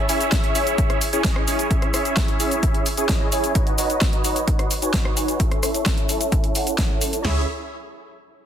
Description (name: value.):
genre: EDM, festival progressive house.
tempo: 130 BPM.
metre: 4/4.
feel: straight.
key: C# minor.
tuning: A4 = 440 Hz.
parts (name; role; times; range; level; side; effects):
supersaw chords; riff; 0.0-7.4 s; C#4 to A5; -23 LUFS; equal; phaser, sidechain pumping, low-pass filter, tape echo.
big-room dance drum kit; drums; 0.1-7.2 s; hi-hat, rim click, shaker, snare drum; -25 LUFS; left 1 dB; overdrive.
house drum kit; drums; 0.3-7.4 s; kick drum, snare drum, toms; -22 LUFS; equal; none.
wide detuned saw bass; bass; 7.2-7.5 s; C#2; -24 LUFS; equal; chorus, sidechain pumping.
room: light reverb.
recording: dense, heavily limited modern master.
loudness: -18 LUFS.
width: side -9 dB against mid.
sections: 0.0-7.2 A section; 7.2-8.5 B section.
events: filter sweep on supersaw synth 0.0-7.2.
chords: 0.0 C#m; 3.6 Badd9; 5.4 A; 7.2 C#m.